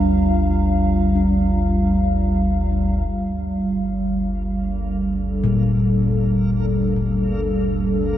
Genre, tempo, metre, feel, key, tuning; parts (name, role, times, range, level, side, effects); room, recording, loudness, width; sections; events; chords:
dark ambient drone; free time; G minor; A4 = 436 Hz
dark analog pad; sustained chords; 0.0-8.2 s; G3 to Bb5; -20 LUFS; right 1 dB; chorus
gamelan-type bossed gongs; arpeggios; 0.0-8.2 s; Bb2 to D4; -24 LUFS; left 2 dB; ping-pong delay
deep rumbling drone; drone; 0.0-8.2 s; G1 to D2; -22 LUFS; equal; built-in reverb, lush chorus
backwards swelling texture; texture; 4.3-8.2 s; Bb3; -39 LUFS; equal; built-in reverb
wet cathedral reverb, RT60 6.6 s; dark, warm production; -18 LUFS; side -12 dB against mid
0.0-3.1 A section; 3.1-8.2 B section
0.0 Gm9